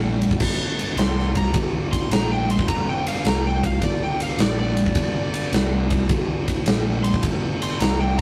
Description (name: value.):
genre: blues rock power trio and southern rock.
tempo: 105 BPM.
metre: 4/4.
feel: swing 68% on 8ths.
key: G minor.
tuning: A4 = 438 Hz.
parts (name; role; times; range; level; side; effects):
fuzz fingered electric bass; bass; 0.0-8.2 s; G1 to C2; -27 LUFS; equal; overdrive.
huge arena drum kit; drums; 0.2-8.2 s; crash cymbal, kick drum, ride cymbal, snare drum; -24 LUFS; equal; none.
overdriven slide guitar; melody; 1.0-8.2 s; D5 to C6; -30 LUFS; equal; none.
room: light reverb.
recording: rough rehearsal-room recording, tube saturation.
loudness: -22 LUFS.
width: mono.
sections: 0.4-8.2 A section.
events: electric slide guitar solo 0.0-8.2.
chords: 0.4 Gm.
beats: | 0.40 0.97 1.54 2.11 | 2.68 3.25 3.82 4.39 | 4.96 5.52 6.09 6.66 | 7.23 7.80.